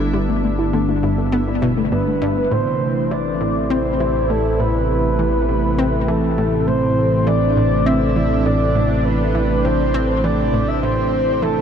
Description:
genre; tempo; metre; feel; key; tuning
ambient, sequencer-driven space music; 101 BPM; 4/4; straight; A minor; A4 = 439 Hz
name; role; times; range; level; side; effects
sweeping resonant pad; sustained chords; 0.0-11.6 s; C3 to E4; -20 LUFS; right 1 dB; chorus
warbly dusty pluck; arpeggios; 0.0-2.4 s; A3 to E4; -26 LUFS; moving between left 5 dB and right 3 dB; chorus, auto-pan, ping-pong delay
fat analog bass; bass; 0.0-11.6 s; G1 to A1; -22 LUFS; equal; none
bubbling stepped-filter texture; texture; 0.0-11.6 s; E4 to G5; -35 LUFS; equal; chorus, built-in reverb
analog pluck; riff; 0.1-11.6 s; G2 to C4; -24 LUFS; equal; chorus, ping-pong delay
breathy flute-like synth lead; melody; 1.9-11.6 s; A4 to E5; -20 LUFS; equal; lush chorus, cassette tape, ping-pong delay
room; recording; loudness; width
moderate huge ambient reverb, RT60 8.5 s; dark, warm production; -16 LUFS; side -8 dB against mid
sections
0.0-2.5 A section; 2.5-11.6 A section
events
fade-in on synth texture 2.5-11.6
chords
0.0 G6; 2.5 Am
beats
| 0.14 0.73 1.33 1.92 | 2.52 3.11 3.71 4.30 | 4.89 5.49 6.08 6.68 | 7.27 7.86 8.46 9.05 | 9.65 10.24 10.83 11.43

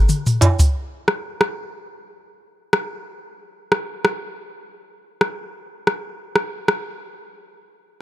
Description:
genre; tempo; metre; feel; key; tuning
dancehall; 91 BPM; 4/4; straight; none; none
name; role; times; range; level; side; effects
island pop drum kit; drums; 0.1-6.8 s; hi-hat, rim click, shaker, toms; -18 LUFS; equal; none
tube shaker and timbales; percussion; 0.1-0.7 s; none; -23 LUFS; right 4 dB; none
room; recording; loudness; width
little or no reverb; none; -19 LUFS; side -14 dB against mid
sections
0.8-8.0 A section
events
drum fill 0.1-0.8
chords
none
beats
0.09 | 0.75 1.41 2.07 2.73 | 3.39 4.05 4.71 5.37 | 6.03 6.68

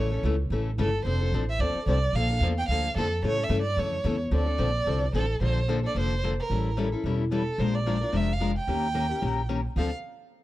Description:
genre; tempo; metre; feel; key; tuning
acoustic string swing (jazz manouche); 220 BPM; 4/4; swing 57% on 8ths; unclear; A4 = 440 Hz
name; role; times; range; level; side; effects
warm violin; melody; 0.0-9.9 s; A4 to G5; -30 LUFS; right 2 dB; none
picked steel-string acoustic guitar; accompaniment; 0.0-9.9 s; C#3 to Bb4; -30 LUFS; left 4 dB; none
upright bass; bass; 0.0-9.9 s; E1 to A2; -27 LUFS; right 1 dB; none
room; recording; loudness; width
small room ambience; dry, close 1970s-style studio recording; -24 LUFS; side -15 dB against mid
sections
0.0-5.4 A section; 5.4-9.8 B section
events
none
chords
0.0 A; 1.0 F6; 2.1 Bbmaj7; 3.2 A; 4.3 Dm7; 5.4 Bbmaj9; 6.5 A7b9; 7.6 Bb7; 8.7 Eb7; 9.8 Dm7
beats
0.23 0.51 0.78 | 1.05 1.32 1.59 1.87 | 2.14 2.41 2.68 2.96 | 3.23 3.50 3.77 4.04 | 4.32 4.59 4.86 5.13 | 5.40 5.68 5.95 6.22 | 6.49 6.77 7.04 7.31 | 7.58 7.86 8.13 8.40 | 8.67 8.95 9.22 9.49 | 9.76

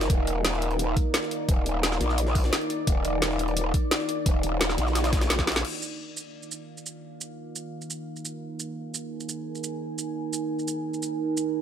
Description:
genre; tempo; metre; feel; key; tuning
dark technical drum and bass; 173 BPM; 4/4; straight; unclear; A4 = 442 Hz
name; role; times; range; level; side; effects
deep dark ambient pad; sustained chords; 0.0-11.6 s; Eb4 to Ab5; -31 LUFS; right 1 dB; chorus, built-in reverb, sidechain pumping
growl bass; bass; 0.0-5.6 s; Eb1 to Bb1; -26 LUFS; equal; chorus, tube saturation, sidechain pumping
jungle sampler-style drum kit; drums; 0.0-5.6 s; hi-hat, snare drum; -34 LUFS; equal; high-pass filter on hats, high-pass filter on snare, high-pass filter on room
drum and bass drum kit; drums; 0.1-11.4 s; crash cymbal, hi-hat, shaker, snare drum; -29 LUFS; equal; overdrive
electronic kick drum; drums; 0.1-5.5 s; none; -25 LUFS; equal; overdrive
room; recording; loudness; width
light reverb; none; -24 LUFS; side -9 dB against mid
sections
0.0-5.6 A section; 5.6-11.6 B section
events
drum fill 5.4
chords
0.0 Eb5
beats
| 0.10 0.45 0.79 1.14 | 1.49 1.83 2.18 2.53 | 2.87 3.22 3.57 3.91 | 4.26 4.61 4.96 5.30 | 5.65 6.00 6.34 6.69 | 7.04 7.38 7.73 8.08 | 8.42 8.77 9.12 9.46 | 9.81 10.16 10.50 10.85 | 11.20 11.54

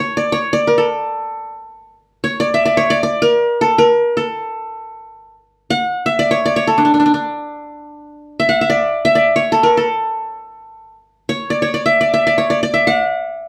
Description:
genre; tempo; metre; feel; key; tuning
Arabic maqam ensemble; free time; none; none; D maqam suznak; A4 = 443 Hz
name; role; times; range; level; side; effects
qanun; solo; 0.0-13.5 s; D4 to F#5-50c; -16 LUFS; equal; none
room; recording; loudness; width
wet studio reverb, RT60 0.5 s; band playing live in one room; -15 LUFS; mono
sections
0.0-8.2 A section; 8.2-13.5 A section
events
none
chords
none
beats
free time

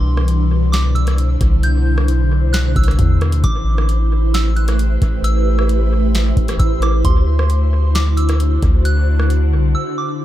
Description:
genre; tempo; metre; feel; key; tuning
hip hop, atmospheric cloud-rap; 133 BPM; 4/4; half-time; unclear; A4 = 440 Hz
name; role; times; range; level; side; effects
soft synth bell; melody; 0.0-10.2 s; C6 to G6; -27 LUFS; right 2 dB; chorus, phaser, low-pass filter, analog delay
ethereal airy pad; sustained chords; 0.0-10.2 s; B2 to C5; -22 LUFS; equal; ensemble chorus, built-in reverb, phaser, sidechain pumping
long sustained 808-style bass; bass; 0.0-9.8 s; A1 to E2; -14 LUFS; equal; none
booming analog drum machine; drums; 0.2-9.4 s; hi-hat, kick drum, rim click, snare drum; -19 LUFS; equal; none
room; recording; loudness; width
little or no reverb; echo-heavy mix; -13 LUFS; side -13 dB against mid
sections
0.0-10.2 A section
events
break 9.8-10.2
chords
0.0 Cmaj9; 3.4 Am9; 7.0 D9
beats
0.28 0.73 1.18 | 1.63 2.08 2.54 2.99 | 3.44 3.89 4.34 4.79 | 5.24 5.69 6.14 6.60 | 7.05 7.50 7.95 8.40 | 8.85 9.30 9.75 10.21

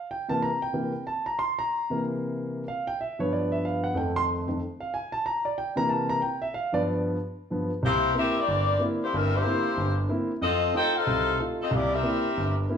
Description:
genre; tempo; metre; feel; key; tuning
jazz; 186 BPM; 4/4; swing 63% on 8ths; C mixolydian, C major from 7.8 s; A4 = 440 Hz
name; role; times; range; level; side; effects
warm concert grand piano; accompaniment; 0.0-12.8 s; G1 to C6; -26 LUFS; equal; none
mellow saxophone section; melody; 7.8-12.6 s; G3 to G5; -25 LUFS; left 3 dB; plate reverb
room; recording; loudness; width
wet large studio reverb, RT60 0.9 s; heard from further back in the room; -24 LUFS; side -7 dB against mid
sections
0.0-7.8 A section; 7.8-12.8 B section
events
grand piano solo 0.0-7.8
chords
0.1 C7; 2.7 G7; 4.0 F7; 5.2 C7; 6.5 G7; 7.8 C7; 10.4 F7; 11.7 C7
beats
| 0.08 0.40 0.72 1.05 | 1.37 1.69 2.02 2.34 | 2.66 2.98 3.31 3.63 | 3.95 4.27 4.60 4.92 | 5.24 5.56 5.89 6.21 | 6.53 6.86 7.18 7.50 | 7.82 8.15 8.47 8.79 | 9.12 9.44 9.76 10.09 | 10.41 10.73 11.06 11.38 | 11.70 12.03 12.35 12.68

